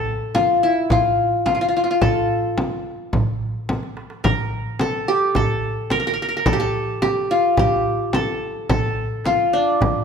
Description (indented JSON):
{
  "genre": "Arabic maqam ensemble",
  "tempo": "108 BPM",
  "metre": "4/4",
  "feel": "straight",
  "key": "unclear",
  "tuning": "A4 = 440 Hz",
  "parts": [
    { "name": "qanun", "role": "melody", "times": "0.0-10.0 s", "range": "D4 to Bb4", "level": "-19 LUFS", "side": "left 1 dB", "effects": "none" },
    { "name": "frame drum", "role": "percussion", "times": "0.3-9.9 s", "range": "none", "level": "-24 LUFS", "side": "left 1 dB", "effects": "none" },
    { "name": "darbuka", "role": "percussion", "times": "0.4-10.0 s", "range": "none", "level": "-27 LUFS", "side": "right 3 dB", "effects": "none" }
  ],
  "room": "moderate recital hall reverb, RT60 1.6 s",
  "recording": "none",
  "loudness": "-18 LUFS",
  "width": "side -6 dB against mid",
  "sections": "0.0-10.0 A section",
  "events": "drum fill 3.7-4.2",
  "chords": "none"
}